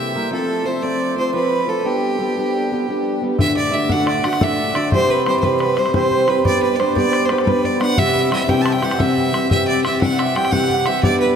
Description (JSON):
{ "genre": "celtic folk, Celtic slip jig", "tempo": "118 BPM (dotted quarters)", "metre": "9/8", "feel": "straight", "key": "G mixolydian", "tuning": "A4 = 440 Hz", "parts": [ { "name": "clear fiddle", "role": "melody", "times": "0.0-11.4 s", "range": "G4 to A5", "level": "-21 LUFS", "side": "right 1 dB", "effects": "none" }, { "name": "cimbalom", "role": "second line", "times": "0.0-11.4 s", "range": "G4 to G5", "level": "-22 LUFS", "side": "right 4 dB", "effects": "none" }, { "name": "fingerpicked plugged-in steel-string acoustic guitar", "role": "accompaniment", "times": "0.0-11.4 s", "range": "D2 to G4", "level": "-20 LUFS", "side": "left 1 dB", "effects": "none" }, { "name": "bodhran", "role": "percussion", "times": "3.4-11.3 s", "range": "none", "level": "-22 LUFS", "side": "left 2 dB", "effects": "none" } ], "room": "wet cathedral reverb, RT60 5.2 s", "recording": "in a vast, echoing space", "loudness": "-15 LUFS", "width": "side -7 dB against mid", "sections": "0.0-3.4 A section; 3.4-11.4 B section", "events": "none", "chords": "0.3 F; 1.9 G; 3.4 D; 4.9 C; 6.4 G; 8.0 C" }